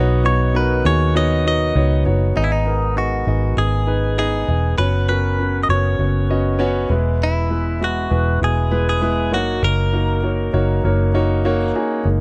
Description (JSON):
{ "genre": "piano-driven pop", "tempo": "99 BPM", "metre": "4/4", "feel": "straight", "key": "B major", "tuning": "A4 = 441 Hz", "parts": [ { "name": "direct-recorded clean electric guitar", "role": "melody", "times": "0.0-11.7 s", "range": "D#4 to D#5", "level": "-25 LUFS", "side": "equal", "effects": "phaser" }, { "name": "warm concert grand piano", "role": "accompaniment", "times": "0.0-12.2 s", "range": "G#2 to D#5", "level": "-23 LUFS", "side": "equal", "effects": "none" }, { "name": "vintage muted fingered electric bass", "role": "bass", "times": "0.0-12.2 s", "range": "E1 to D#2", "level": "-21 LUFS", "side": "equal", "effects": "none" } ], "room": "little or no reverb", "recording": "dry, close 1970s-style studio recording", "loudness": "-18 LUFS", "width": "mono", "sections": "0.0-2.4 A section; 2.4-12.1 B section", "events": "none", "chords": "0.0 Badd9; 2.4 G#m; 4.8 Bsus2/F#; 6.9 E; 9.3 F#6" }